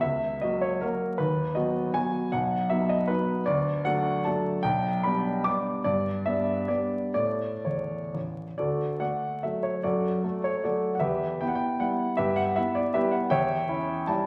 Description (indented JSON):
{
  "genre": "classical, romantic triple-time dance for piano with dotted rhythms",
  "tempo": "115-171 BPM",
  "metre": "3/4",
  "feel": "rubato",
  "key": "B major, D major from 3.5 s",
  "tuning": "A4 = 437 Hz",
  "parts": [
    { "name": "clear grand piano", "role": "solo", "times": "0.0-14.3 s", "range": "A1 to D6", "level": "-27 LUFS", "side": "equal", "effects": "none" }
  ],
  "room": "wet recital hall reverb, RT60 1.4 s",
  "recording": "vinyl crackle",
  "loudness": "-27 LUFS",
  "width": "mono",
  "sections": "0.0-8.6 A section; 8.6-14.3 B section",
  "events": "none",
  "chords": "0.0 F#7/C#; 1.2 B/D#; 2.3 B; 3.5 D; 4.6 G/B; 5.8 G; 7.2 A; 8.6 D; 9.8 D/F#; 11.0 Em; 12.2 Em/G; 13.3 C#dim/E"
}